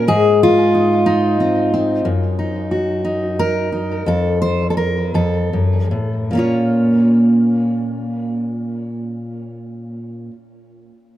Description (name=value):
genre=folk, solo fingerstyle acoustic guitar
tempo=50-61 BPM (dotted quarters)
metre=6/8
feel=straight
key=Bb minor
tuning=A4 = 443 Hz
part: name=fingerpicked steel-string acoustic guitar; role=solo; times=0.0-10.3 s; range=F2 to Db5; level=-15 LUFS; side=equal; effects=tape echo
room=light reverb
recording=none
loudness=-15 LUFS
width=side -13 dB against mid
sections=0.0-6.3 A section; 6.3-11.1 B section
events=slowing down 2.0-6.3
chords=0.1 Ab; 2.0 Gb6; 4.1 F; 6.3 Bbm